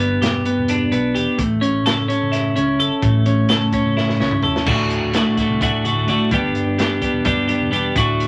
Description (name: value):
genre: psychedelic rock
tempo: 256 BPM (eighths)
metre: 7/8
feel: straight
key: D major from 4.7 s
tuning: A4 = 440 Hz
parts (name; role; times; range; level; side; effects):
- twelve-string electric guitar; riff; 0.0-8.3 s; D2 to A4; -19 LUFS; equal; none
- picked electric bass; bass; 0.0-8.3 s; D1 to G2; -30 LUFS; equal; none
- crunchy breakbeat drum kit; drums; 0.2-8.3 s; crash cymbal, hi-hat, kick drum, snare drum, toms; -26 LUFS; equal; none
room: wet small room reverb, RT60 0.5 s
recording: vinyl crackle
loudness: -18 LUFS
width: mono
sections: 0.0-4.7 A section; 4.7-8.3 B section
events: drum fill 4.0-4.7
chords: 0.0 G; 1.4 A; 4.7 D; 6.3 G